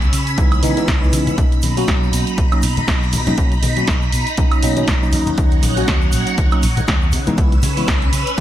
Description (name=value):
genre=filtered disco house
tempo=120 BPM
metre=4/4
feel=swing 57% on 16ths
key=B major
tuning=A4 = 440 Hz
part: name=phased string machine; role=sustained chords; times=0.0-8.4 s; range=C#4 to E6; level=-24 LUFS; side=equal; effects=ensemble chorus, phaser, sidechain pumping
part: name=fingered electric bass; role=bass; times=0.0-8.4 s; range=A#1 to C#3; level=-22 LUFS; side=equal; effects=sidechain pumping
part: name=punchy analog drum machine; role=drums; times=0.0-8.4 s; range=hi-hat, snare drum, woodblock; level=-24 LUFS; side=right 2 dB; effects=sidechain pumping on hats, sidechain pumping on perc, gated reverb
part: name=tube shaker and congas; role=percussion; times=0.0-8.4 s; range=none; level=-27 LUFS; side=left 3 dB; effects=sidechain pumping on perc
part: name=mellow tine electric piano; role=accompaniment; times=0.4-8.4 s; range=E3 to F#4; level=-22 LUFS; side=equal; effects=phaser, vintage 12-bit sampler grit, sidechain pumping
part: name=electronic kick drum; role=drums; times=0.4-8.4 s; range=none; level=-17 LUFS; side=equal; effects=none
room=little or no reverb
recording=bright 1980s-style digital production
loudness=-14 LUFS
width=side -12 dB against mid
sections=0.0-8.4 A section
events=none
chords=0.0 C#m7; 1.4 Bmaj7; 5.1 D#m7; 7.1 C#m7